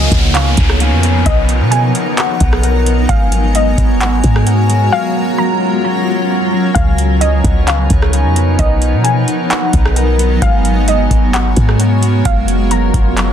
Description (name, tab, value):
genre	hip hop, atmospheric cloud-rap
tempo	131 BPM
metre	4/4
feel	half-time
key	F# major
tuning	A4 = 440 Hz
part	warbly dusty pluck	melody	0.0-13.1 s	D#5 to A#5	-20 LUFS	equal	chorus, low-pass filter, tape echo
part	granular cloud pad	sustained chords	0.0-13.3 s	E#3 to A#5	-17 LUFS	right 1 dB	built-in reverb, sidechain pumping
part	concert harp	arpeggios	0.0-13.3 s	C#3 to A#4	-22 LUFS	left 6 dB	low-pass filter, tape echo
part	clean 808-style bass	bass	0.0-13.3 s	F#1 to B2	-13 LUFS	equal	none
part	downlifter	sound effects	0.0-3.1 s	none	-21 LUFS	equal	none
part	drifting glass-harmonics texture	texture	0.1-13.3 s	F#3 to C#5	-25 LUFS	right 2 dB	chorus, built-in reverb
part	booming analog drum machine	drums	0.1-13.3 s	handclaps, hi-hat, kick drum, rim click	-15 LUFS	equal	none
room	little or no reverb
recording	dense, heavily limited modern master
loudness	-10 LUFS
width	side -9 dB against mid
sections	0.0-13.3 A section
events	break 4.9-6.8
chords	0.0 C#13; 1.3 Bmaj7; 3.1 G#m11; 4.9 F#maj7; 6.8 C#13; 8.6 Bmaj7; 10.4 G#m11; 12.3 F#maj7